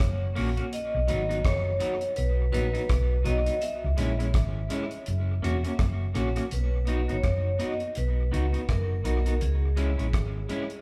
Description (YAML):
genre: roots reggae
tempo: 83 BPM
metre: 4/4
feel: swing 59% on 16ths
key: B major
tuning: A4 = 438 Hz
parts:
  - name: vibraphone with hard mallets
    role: melody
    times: 0.0-10.8 s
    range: G#4 to E5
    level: -35 LUFS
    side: equal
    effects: none
  - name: hollow-body short-scale fingered electric bass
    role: bass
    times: 0.0-10.5 s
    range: E1 to C#2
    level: -29 LUFS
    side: equal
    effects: none
  - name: damped 70s drum kit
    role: drums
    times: 0.0-10.8 s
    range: hi-hat, kick drum, rim click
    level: -32 LUFS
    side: equal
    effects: tape echo
  - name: electric guitar at the edge of break-up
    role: accompaniment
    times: 0.4-10.6 s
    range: F#3 to F#4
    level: -35 LUFS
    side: equal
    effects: tape echo
room: wet large studio reverb, RT60 1.1 s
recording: band playing live in one room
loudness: -27 LUFS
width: mono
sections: 0.0-6.5 A section; 6.5-10.8 B section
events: none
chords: 0.0 F#; 0.7 B; 3.6 C#m; 5.1 F#; 6.5 B; 9.4 C#m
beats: 0.00 | 0.72 1.45 2.17 2.90 | 3.62 4.34 5.07 5.79 | 6.51 7.24 7.96 8.69 | 9.41 10.13